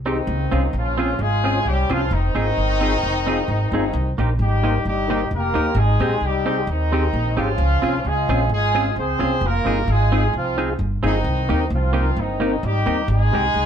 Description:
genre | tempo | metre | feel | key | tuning
ska | 131 BPM | 4/4 | swing 53% on 8ths | unclear | A4 = 438 Hz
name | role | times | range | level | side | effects
upright bass | bass | 0.0-13.7 s | F1 to Eb2 | -21 LUFS | equal | none
warm horn section | melody | 0.1-13.7 s | Eb3 to C5 | -22 LUFS | equal | none
semi-hollow electric guitar | accompaniment | 0.1-13.4 s | Ab3 to Ab4 | -26 LUFS | right 3 dB | none
mellow tonewheel organ | stabs | 0.1-13.5 s | C4 to C5 | -27 LUFS | left 4 dB | chorus vibrato, slow rotary speaker
room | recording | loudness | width
moderate studio reverb, RT60 0.7 s | band playing live in one room | -18 LUFS | side -8 dB against mid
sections
0.3-13.7 A section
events
none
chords
0.3 Dbmaj7; 2.1 Fm7; 3.9 Cm7; 5.8 Abmaj7; 7.6 Dbmaj7; 9.4 Fm7; 11.2 Cm7; 13.1 Abmaj7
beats
| 0.28 0.74 1.20 1.65 | 2.11 2.57 3.02 3.48 | 3.94 4.40 4.85 5.31 | 5.77 6.22 6.68 7.14 | 7.59 8.05 8.51 8.96 | 9.42 9.88 10.33 10.79 | 11.25 11.71 12.16 12.62 | 13.08 13.54

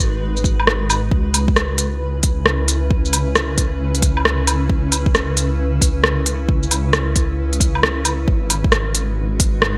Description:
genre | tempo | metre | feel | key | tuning
future garage | 134 BPM | 4/4 | swing 64% on 16ths | C# minor | A4 = 440 Hz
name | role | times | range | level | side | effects
granular cloud pad | sustained chords | 0.0-9.8 s | C#3 to B4 | -27 LUFS | equal | built-in reverb, sidechain pumping
dark detuned saw bass | bass | 0.0-9.8 s | G#1 to C#2 | -23 LUFS | equal | sidechain pumping
organic electronic drum kit | drums | 0.0-9.7 s | hi-hat, rim click, shaker, woodblock | -20 LUFS | equal | gated reverb
electronic kick drum | drums | 0.4-9.5 s | none | -21 LUFS | equal | none
room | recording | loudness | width
light reverb, digital ambience | bright 1980s-style digital production | -18 LUFS | mono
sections
0.0-9.8 A section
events
none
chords
0.0 G#m7; 1.1 C#m7; 8.3 G#m7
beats
0.22 0.66 | 1.11 1.56 2.01 2.45 | 2.90 3.35 3.80 4.25 | 4.69 5.14 5.59 6.04 | 6.48 6.93 7.38 7.83 | 8.28 8.72 9.17 9.62

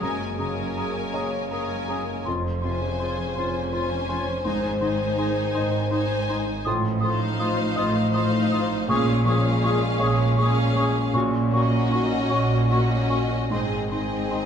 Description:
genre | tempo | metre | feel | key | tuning
cinematic, emotional film score for orchestra | 54 BPM (dotted quarters) | 6/8 | rubato | Bb minor | A4 = 440 Hz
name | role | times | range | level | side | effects
warm symphonic violin section | melody | 0.0-14.5 s | Eb5 to Ab5 | -34 LUFS | left 3 dB | none
mellow hollow silver concert flute | second line | 0.0-14.4 s | Bb5 to Eb6 | -32 LUFS | left 1 dB | none
warm clarinet | second line | 0.0-14.5 s | Eb4 to Ab4 | -31 LUFS | left 2 dB | none
warm symphonic violin section | second line | 0.0-14.5 s | Gb4 to C5 | -33 LUFS | left 1 dB | none
felt-muted upright piano | accompaniment | 0.0-14.5 s | F2 to Eb5 | -30 LUFS | equal | none
rich symphonic viola section | accompaniment | 0.0-14.5 s | Db3 to Eb4 | -34 LUFS | right 2 dB | none
mellow French horn section | sustained chords | 0.0-14.5 s | Eb3 to C5 | -30 LUFS | left 3 dB | none
rich studio double bass section | bass | 0.0-14.5 s | F1 to Bb1 | -27 LUFS | right 1 dB | none
warm symphonic cello section | bass | 0.0-14.5 s | F2 to Bb2 | -28 LUFS | right 2 dB | none
room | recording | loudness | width
wet scoring stage reverb, RT60 2.1 s | minimal, uncompressed stereo recording | -21 LUFS | side -8 dB against mid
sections
0.0-14.5 A section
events
none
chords
0.0 Gbadd9; 2.3 Dbmaj7/F; 4.4 Ab; 6.7 F7/A; 8.9 Bbm7; 11.1 Ebm7/Bb; 13.5 Ab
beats
| 0.02 1.14 | 2.26 3.36 | 4.45 5.55 | 6.66 7.76 | 8.89 10.00 | 11.14 12.29 | 13.50

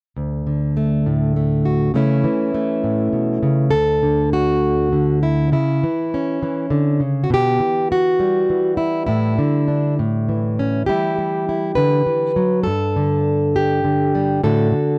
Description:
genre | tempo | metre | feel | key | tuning
folk, solo fingerstyle acoustic guitar | 67 BPM (dotted quarters) | 6/8 | straight | D major | A4 = 438 Hz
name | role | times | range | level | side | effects
fingerpicked plugged-in steel-string acoustic guitar | solo | 0.2-15.0 s | D2 to B4 | -18 LUFS | equal | none
room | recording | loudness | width
light reverb | dry, close 1970s-style studio recording | -19 LUFS | mono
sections
0.2-3.7 A section; 3.7-15.0 B section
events
none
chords
0.2 D; 1.9 A/C#; 3.7 Dadd9; 5.5 C#m; 7.3 Em/B; 9.1 A7sus4; 10.0 A; 10.9 Emadd9; 12.7 Gsus2; 14.4 D/A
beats
| 0.16 1.06 | 1.95 2.83 | 3.73 4.63 | 5.52 6.41 | 7.30 8.18 | 9.07 9.97 | 10.87 11.76 | 12.65 13.54 | 14.42

